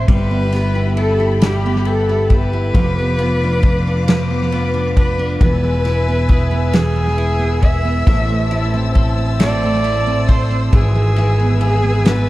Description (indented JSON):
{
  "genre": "six-eight pop ballad",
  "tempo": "45 BPM (dotted quarters)",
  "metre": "6/8",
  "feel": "straight",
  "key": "unclear",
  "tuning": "A4 = 440 Hz",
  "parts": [
    { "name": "rich cello", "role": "melody", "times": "0.0-12.3 s", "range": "G4 to E5", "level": "-21 LUFS", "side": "equal", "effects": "tape echo" },
    { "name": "picked steel-string acoustic guitar", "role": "accompaniment", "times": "0.0-12.3 s", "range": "G#2 to G4", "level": "-21 LUFS", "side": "right 3 dB", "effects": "tape echo" },
    { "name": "warm studio string section", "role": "sustained chords", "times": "0.0-12.3 s", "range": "G4 to E6", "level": "-28 LUFS", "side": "left 4 dB", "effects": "none" },
    { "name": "twelve-string electric guitar", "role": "arpeggios", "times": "0.0-12.3 s", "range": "E3 to A4", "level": "-27 LUFS", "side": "left 3 dB", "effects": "none" },
    { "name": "fretless electric bass", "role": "bass", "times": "0.0-12.3 s", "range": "E1 to A1", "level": "-18 LUFS", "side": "equal", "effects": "wide subtle chorus" },
    { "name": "unplugged drum kit", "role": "drums", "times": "0.1-12.3 s", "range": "kick drum, ride cymbal, snare drum", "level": "-16 LUFS", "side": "equal", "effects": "none" }
  ],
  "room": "light reverb, small room ambience",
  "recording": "echo-heavy mix, cassette tape",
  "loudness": "-13 LUFS",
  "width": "side -17 dB against mid",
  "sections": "0.0-12.3 A section",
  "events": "none",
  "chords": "0.1 Em/G; 2.7 Bdim/F; 5.4 E; 8.1 Am; 10.7 E/G#"
}